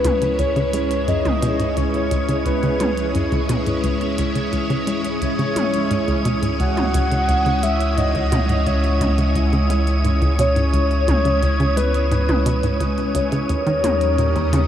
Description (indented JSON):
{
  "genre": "ambient, sequencer-driven space music",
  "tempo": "87 BPM",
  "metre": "4/4",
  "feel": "straight",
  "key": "C# minor",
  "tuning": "A4 = 442 Hz",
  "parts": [
    { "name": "soft octave-layered synth lead", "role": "melody", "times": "0.0-14.7 s", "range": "B4 to F#5", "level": "-23 LUFS", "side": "left 1 dB", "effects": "chorus, phaser, shimmer reverb, analog delay" },
    { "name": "string machine, full ensemble", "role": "sustained chords", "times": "0.0-14.7 s", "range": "G3 to C#5", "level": "-22 LUFS", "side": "equal", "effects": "ensemble chorus, shimmer reverb" },
    { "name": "hollow square pluck", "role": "riff", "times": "0.0-14.6 s", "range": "C#2 to A#3", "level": "-24 LUFS", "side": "equal", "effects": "chorus, vintage 12-bit sampler grit, analog delay" },
    { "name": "round analog bass", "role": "bass", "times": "0.0-14.7 s", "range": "C#2 to D#2", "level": "-22 LUFS", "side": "equal", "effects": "none" },
    { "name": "minimal click drum kit", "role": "percussion", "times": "0.0-14.7 s", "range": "hi-hat, toms", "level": "-29 LUFS", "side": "equal", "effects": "none" },
    { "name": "wind-like tuned noise texture", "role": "texture", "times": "0.0-14.7 s", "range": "D#6", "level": "-31 LUFS", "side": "right 2 dB", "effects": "built-in reverb, shimmer reverb" }
  ],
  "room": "moderate huge ambient reverb, RT60 8.6 s",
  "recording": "none",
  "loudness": "-17 LUFS",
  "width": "side -10 dB against mid",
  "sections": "0.0-14.7 A section",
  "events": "fade-in on analog synth bass 0.0-14.7; fade-in on synth texture 0.0-14.7; filter sweep on synth arpeggio sound 0.0-14.7",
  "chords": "0.0 C#m; 13.5 D#7"
}